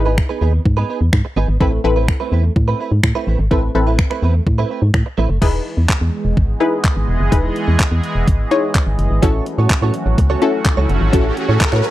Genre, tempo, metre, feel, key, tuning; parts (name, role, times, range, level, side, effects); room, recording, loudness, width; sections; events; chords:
dance-pop; 126 BPM; 4/4; straight; E major; A4 = 439 Hz
wide unison pluck; accompaniment; 0.0-11.9 s; C4 to C#5; -19 LUFS; left 4 dB; sidechain pumping
organ-like FM bass; bass; 0.0-11.8 s; E1 to A2; -16 LUFS; equal; sidechain pumping
direct-recorded clean electric guitar; riff; 0.1-5.4, 9.2-11.9 s; A3 to C#5; -22 LUFS; right 7 dB; ensemble chorus
clean 12-bit digital drum machine; drums; 0.2-11.9 s; crash cymbal, finger snaps, handclaps, hi-hat, kick drum; -16 LUFS; equal
sweeping resonant pad; sustained chords; 5.4-11.9 s; E3 to D#5; -24 LUFS; right 2 dB; chorus, sidechain pumping
riser; sound effects; 10.0-11.9 s; -26 LUFS; equal
digital ambience; dry, close 1970s-style studio recording; -14 LUFS; side -15 dB against mid
0.0-5.4 A section; 5.4-11.9 B section
riser 10.0-11.9
0.0 Emaj7; 1.6 Amadd9; 5.4 Emaj7; 9.2 A6